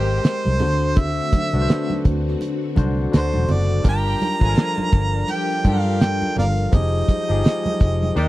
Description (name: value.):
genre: lush 1970s-style soul.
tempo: 83 BPM.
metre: 4/4.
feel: swing 58% on 16ths.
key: unclear.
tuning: A4 = 440 Hz.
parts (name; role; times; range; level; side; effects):
warm harmonica; melody; 0.0-8.3 s; Bb4 to Bb5; -24 LUFS; right 2 dB; none.
warm studio violin section; second line; 0.0-5.9 s; G4 to Ab5; -33 LUFS; equal; none.
barky tine electric piano; accompaniment; 0.0-8.3 s; D3 to D5; -25 LUFS; left 3 dB; overdrive.
phased string machine; sustained chords; 0.0-8.3 s; D3 to G5; -31 LUFS; left 1 dB; ensemble chorus, phaser.
vintage muted fingered electric bass; bass; 0.0-8.3 s; Fb1 to G2; -21 LUFS; equal; none.
damped 70s drum kit; drums; 0.2-8.3 s; hi-hat, kick drum, snare drum; -16 LUFS; equal; none.
congas; percussion; 0.5-8.2 s; none; -29 LUFS; right 2 dB; none.
mellow horn section; stabs; 8.2-8.3 s; Eb3 to G4; -24 LUFS; right 3 dB; none.
room: little or no reverb.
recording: dry, close 1970s-style studio recording.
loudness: -17 LUFS.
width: side -16 dB against mid.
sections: 0.0-8.3 A section.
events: band accent 6.7-8.3.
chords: 0.0 Abmaj9; 0.6 D7; 3.9 Gm7; 6.7 Fm9.